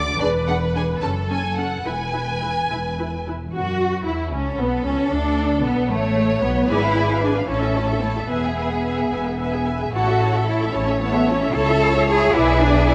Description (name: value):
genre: quick classical-period movement for string orchestra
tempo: 75 BPM (dotted quarters)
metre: 6/8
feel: rubato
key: A major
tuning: A4 = 440 Hz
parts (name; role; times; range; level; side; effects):
- dark symphonic violin section; melody; 0.0-12.9 s; A3 to D6; -30 LUFS; equal; none
- rich symphonic violin section; second line; 0.0-12.9 s; G#4 to D5; -30 LUFS; equal; none
- warm chamber cello section; bass; 0.0-12.9 s; E2 to A4; -25 LUFS; equal; none
- warm symphonic double bass section; bass; 0.0-12.9 s; E1 to F#2; -26 LUFS; equal; none
- warm symphonic viola section; accompaniment; 0.2-12.9 s; A3 to G#5; -28 LUFS; equal; none
room: moderate scoring stage reverb, RT60 2.0 s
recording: nothing above 10.5 kHz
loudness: -21 LUFS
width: mono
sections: 0.0-3.5 A section; 3.5-12.9 B section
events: none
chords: 0.2 E7; 1.0 F#m; 1.9 E; 3.5 A; 5.1 Bm7; 6.7 G#dim7; 7.5 A; 8.3 E; 9.9 A; 11.5 A/C#; 12.3 E7/B